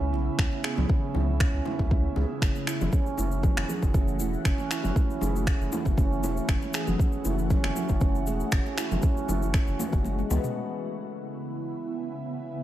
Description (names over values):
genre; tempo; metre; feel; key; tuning
afro house; 118 BPM; 4/4; swing 54% on 16ths; unclear; A4 = 442 Hz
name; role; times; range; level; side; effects
ethereal airy pad; sustained chords; 0.0-12.6 s; C#3 to F#4; -35 LUFS; left 1 dB; ensemble chorus, built-in reverb, phaser, sidechain pumping
round analog bass; bass; 0.0-10.4 s; E1 to C#2; -29 LUFS; equal; sidechain pumping
handpan; arpeggios; 0.1-10.4 s; G#3 to G#4; -32 LUFS; right 4 dB; sidechain pumping, low-pass filter, dub echo
congas; percussion; 0.1-10.4 s; none; -36 LUFS; right 2 dB; none
afro-pop drum kit; drums; 0.4-10.5 s; finger snaps, toms; -33 LUFS; equal; none
electronic kick drum; drums; 0.4-10.0 s; none; -24 LUFS; equal; none
bongos; percussion; 0.8-10.4 s; none; -38 LUFS; left 6 dB; none
egg shaker; percussion; 2.4-10.5 s; none; -41 LUFS; left 5 dB; none
room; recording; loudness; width
light reverb, studio reverb; none; -24 LUFS; side -13 dB against mid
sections
0.0-10.6 A section; 10.6-12.6 B section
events
kick drops out 10.0-10.6; drum fill 10.2-10.6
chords
0.0 C#m7; 2.4 F#m7; 10.6 C#m7